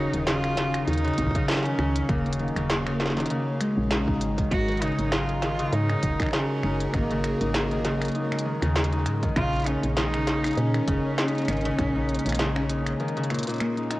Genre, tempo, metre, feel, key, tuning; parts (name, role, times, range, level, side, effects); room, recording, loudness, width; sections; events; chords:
IDM; 99 BPM; 4/4; swing 56% on 16ths; Eb minor; A4 = 441 Hz
rich cello; melody; 0.0-13.6 s; Bb3 to Gb4; -30 LUFS; right 1 dB; vintage 12-bit sampler grit, cassette tape, analog delay
phased analog pad; sustained chords; 0.0-14.0 s; Eb3 to F5; -34 LUFS; right 1 dB; phaser, chorus, cassette tape
Celtic harp; arpeggios; 0.0-14.0 s; Bb2 to Eb4; -27 LUFS; left 1 dB; vintage 12-bit sampler grit, cassette tape, tape echo
woody FM bass; bass; 0.0-12.9 s; Eb1 to Bb2; -29 LUFS; equal
industrial drum kit; drums; 0.1-14.0 s; finger snaps, hi-hat, snare drum; -30 LUFS; equal; cassette tape
electronic kick drum; drums; 1.2-11.9 s; -29 LUFS; equal; cassette tape
light reverb, digital ambience; home recording on cassette; -23 LUFS; side -18 dB against mid
0.0-14.0 A section
0.0 Ebm9; 4.5 Absus2; 9.4 Bbm7